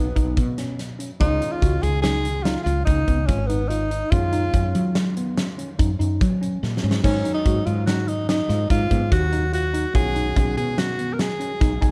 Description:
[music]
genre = progressive instrumental, band music in an uneven meter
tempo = 144 BPM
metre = 7/4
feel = straight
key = unclear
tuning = A4 = 439 Hz
[part]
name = clear tenor saxophone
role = melody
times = 0.0-11.9 s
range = Cb4 to Bb4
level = -28 LUFS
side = equal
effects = digital delay
[part]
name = warm concert grand piano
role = accompaniment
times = 0.0-11.9 s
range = C#3 to G#5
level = -36 LUFS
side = equal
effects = none
[part]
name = tine electric piano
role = arpeggios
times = 0.0-11.9 s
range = Cb4 to Gb4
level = -32 LUFS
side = equal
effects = none
[part]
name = woody fretless electric bass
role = bass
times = 0.0-11.9 s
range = Ab1 to Gb3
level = -26 LUFS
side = equal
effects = none
[part]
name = big rock drum kit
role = drums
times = 0.2-11.9 s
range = hi-hat, kick drum, snare drum, splash cymbal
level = -26 LUFS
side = equal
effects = none
[sound]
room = light reverb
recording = dark, warm production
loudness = -22 LUFS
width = mono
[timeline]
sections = 0.0-11.9 A section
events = drum fill 6.6-7.0; grand piano fill 11.6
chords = 0.0 Badd9; 1.2 Dbadd9; 4.1 Gbmaj7(no3); 7.0 Ab7(no3); 10.0 B69

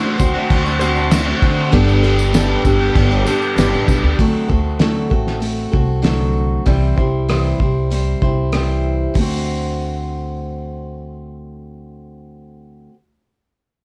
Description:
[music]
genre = folk rock and heartland rock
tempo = 97 BPM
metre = 4/4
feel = straight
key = D mixolydian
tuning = A4 = 440 Hz
[part]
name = picked steel-string acoustic guitar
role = accompaniment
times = 0.0-13.0 s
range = C3 to C5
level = -23 LUFS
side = equal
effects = none
[part]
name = tonewheel organ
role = sustained chords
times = 0.0-4.2 s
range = B3 to C5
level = -30 LUFS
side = equal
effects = none
[part]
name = overdriven electric guitar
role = riff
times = 0.0-4.2 s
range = G2 to G4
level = -25 LUFS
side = equal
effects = phaser
[part]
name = upright bass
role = bass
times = 0.2-12.9 s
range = G1 to D3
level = -22 LUFS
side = equal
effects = none
[part]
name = cloth-damped thuddy drum kit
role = drums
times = 0.2-9.3 s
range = crash cymbal, hi-hat, kick drum, rim click, snare drum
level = -21 LUFS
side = equal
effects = none
[part]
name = tambourine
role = percussion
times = 0.2-4.0 s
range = none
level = -37 LUFS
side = equal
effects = none
[sound]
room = light reverb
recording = dark, warm production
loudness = -17 LUFS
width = mono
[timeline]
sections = 0.0-4.2 A section; 4.2-9.2 B section; 9.2-11.7 C section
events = none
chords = 0.0 D7; 1.7 Gadd9; 4.2 D7; 6.7 C; 9.2 D7

